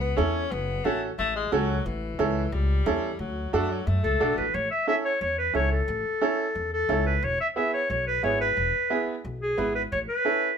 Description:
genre	latin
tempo	179 BPM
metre	4/4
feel	straight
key	A major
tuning	A4 = 440 Hz
part	warm tenor saxophone	second line	0.0-4.4 s	E3 to C#4	-31 LUFS	left 5 dB	none
part	upright bass	bass	0.0-10.1 s	E1 to F#2	-29 LUFS	equal	none
part	bright upright piano	accompaniment	0.2-10.5 s	B3 to B4	-27 LUFS	right 4 dB	none
part	clear clarinet	melody	4.0-10.6 s	G#4 to E5	-25 LUFS	equal	none
room	light reverb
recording	minimal, uncompressed stereo recording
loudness	-23 LUFS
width	side -7 dB against mid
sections	0.0-4.5 A section; 4.5-10.6 B section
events	none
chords	0.0 Aadd9; 0.5 F#m; 1.9 A7; 3.2 D; 4.5 A; 7.2 E; 9.9 A

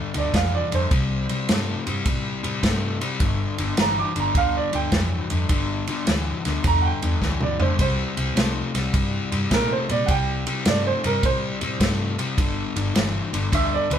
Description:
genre	electric blues shuffle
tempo	105 BPM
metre	4/4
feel	swing 66% on 8ths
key	unclear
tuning	A4 = 442 Hz
part	bright upright piano	accompaniment	0.0-14.0 s	Bb4 to D6	-25 LUFS	right 6 dB	none
part	overdriven semi-hollow guitar	riff	0.0-14.0 s	G2 to A3	-26 LUFS	left 4 dB	none
part	warm soul drum kit	drums	0.1-14.0 s	kick drum, ride cymbal, snare drum, toms	-25 LUFS	equal	none
part	vintage muted fingered electric bass	bass	0.2-14.0 s	G1 to Bb2	-26 LUFS	equal	none
room	wet studio reverb, RT60 0.6 s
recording	band playing live in one room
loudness	-20 LUFS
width	side -9 dB against mid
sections	0.0-14.0 A section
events	drum fill 7.2-7.8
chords	0.0 G5; 0.9 C5; 3.2 G5; 7.8 C5; 12.4 G5

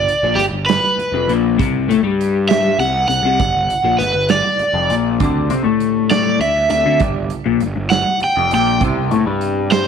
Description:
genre	indie rock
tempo	66 BPM (dotted quarters)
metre	6/8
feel	straight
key	unclear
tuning	A4 = 440 Hz
part	overdriven electric guitar	melody	0.0-9.9 s	G4 to G5	-16 LUFS	right 2 dB	slapback echo
part	electric guitar through a small old amp	riff	0.0-9.9 s	F2 to C4	-18 LUFS	left 12 dB	phaser
part	fuzz picked electric bass	bass	0.0-9.9 s	F1 to C3	-22 LUFS	right 2 dB	overdrive
part	big rock drum kit	drums	0.1-9.9 s	hi-hat, kick drum, snare drum	-22 LUFS	right 6 dB	none
part	electric guitar through a small old amp	riff	5.2-9.9 s	C3 to D5	-27 LUFS	right 11 dB	analog chorus, slapback echo
room	light reverb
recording	1960s-style stereo with parts hard left and right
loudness	-14 LUFS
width	side -7 dB against mid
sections	0.0-9.9 A section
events	none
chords	0.0 G5; 1.6 C5; 3.4 G5; 5.2 D7sus4; 7.0 G5; 8.8 Cmaj7

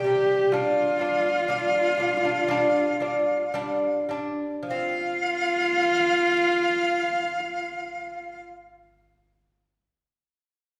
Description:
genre	mongolian traditional, Mongolian folk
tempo	52-64 BPM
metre	4/4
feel	straight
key	unclear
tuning	A4 = 440 Hz
part	warm horsehead fiddle	melody	0.0-8.4 s	F4 to G4	-28 LUFS	equal	none
part	bright reedy dizi	second line	0.0-8.4 s	F5 to G5	-30 LUFS	equal	none
part	lute	arpeggios	0.0-8.4 s	C3 to D4	-28 LUFS	equal	none
room	wet recital hall reverb, RT60 1.4 s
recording	recorded in a church or concert hall, faint mains hum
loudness	-24 LUFS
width	mono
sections	0.0-4.7 A section; 4.7-9.3 B section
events	slowing down 0.0-4.7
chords	0.0 C5; 0.5 G5; 4.7 F5

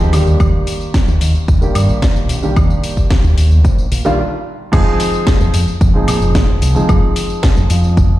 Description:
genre	nu-disco, nu disco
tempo	111 BPM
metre	4/4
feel	straight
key	F dorian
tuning	A4 = 440 Hz
part	dark concert grand piano	accompaniment	0.0-8.2 s	Eb3 to Ab4	-18 LUFS	right 1 dB	slapback echo
part	fingered electric bass with an envelope filter	bass	0.0-8.2 s	F1 to Bb2	-13 LUFS	equal	none
part	house drum kit	drums	0.0-8.1 s	crash cymbal, hi-hat, snare drum, tambourine, woodblock	-23 LUFS	left 1 dB	none
part	electronic kick drum	drums	0.4-8.1 s	none	-13 LUFS	equal	none
room	little or no reverb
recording	played on a big sound system in a bare room, large studio reverb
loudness	-11 LUFS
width	side -15 dB against mid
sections	0.0-4.7 A section; 4.7-8.2 B section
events	stop 4.2-4.7; drop 4.7-8.2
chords	0.1 Ebmaj7; 4.7 Fm7

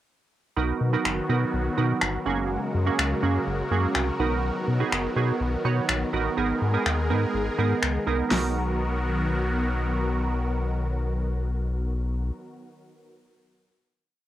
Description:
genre	dance-pop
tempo	124 BPM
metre	4/4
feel	straight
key	B major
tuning	A4 = 440 Hz
part	glassy wavetable pluck	accompaniment	0.6-12.3 s	A#3 to C#5	-27 LUFS	right 6 dB	chorus
part	supersaw pad	sustained chords	0.6-12.3 s	C#3 to A#4	-29 LUFS	equal	phaser
part	round analog bass	bass	0.6-12.3 s	F#1 to B2	-26 LUFS	left 1 dB	none
part	pop drum kit	drums	1.1-8.4 s	finger snaps, hi-hat, snare drum	-26 LUFS	left 1 dB	overdrive, cassette tape
room	light reverb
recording	home recording on cassette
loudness	-23 LUFS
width	side -13 dB against mid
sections	0.6-8.3 verse; 8.3-12.2 final chord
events	none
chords	0.6 Bmaj7; 2.3 F#add9; 4.2 Bmaj7; 6.4 G#madd9; 8.3 Bmaj7

